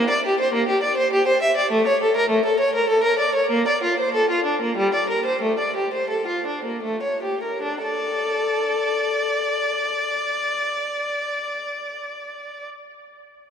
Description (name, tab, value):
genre	classical, baroque-style suite movement for unaccompanied violin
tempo	73-103 BPM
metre	3/4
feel	rubato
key	D minor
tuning	A4 = 440 Hz
part	rich violin	solo	0.0-12.7 s	G3 to E5	-20 LUFS	equal	none
room	wet cathedral reverb, RT60 5.0 s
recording	none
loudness	-19 LUFS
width	side -7 dB against mid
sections	0.0-7.6 A section; 7.6-12.4 B section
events	slowing down 2.6-7.6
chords	0.0 Gm/Bb; 1.7 A; 3.5 Bb; 4.8 Gm; 5.4 A7sus4; 6.8 A7; 7.6 D5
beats	0.53 1.11 | 1.70 2.29 2.89 | 3.50 4.12 4.76 | 5.40 6.09 6.82 | 7.62 8.42 9.21 | 9.99 10.78 11.57